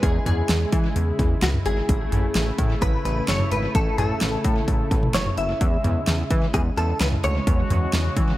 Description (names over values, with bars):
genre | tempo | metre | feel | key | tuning
synth-pop | 129 BPM | 4/4 | straight | E major | A4 = 439 Hz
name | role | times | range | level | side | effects
direct-recorded clean electric guitar | melody | 0.0-8.4 s | F#4 to E5 | -27 LUFS | left 1 dB | ensemble chorus, dub echo
brassy analog pad | sustained chords | 0.0-8.4 s | C#3 to F#4 | -30 LUFS | right 1 dB | chorus, tremolo
chorused synth bass | bass | 0.0-8.3 s | F#1 to E3 | -24 LUFS | equal | none
pop drum kit | drums | 0.0-8.3 s | cowbell, hi-hat, kick drum, snare drum, toms | -23 LUFS | equal | none
room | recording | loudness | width
digital ambience | echo-heavy mix | -19 LUFS | side -16 dB against mid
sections
0.0-8.4 A section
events
none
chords
0.0 E6; 1.9 A; 5.6 E6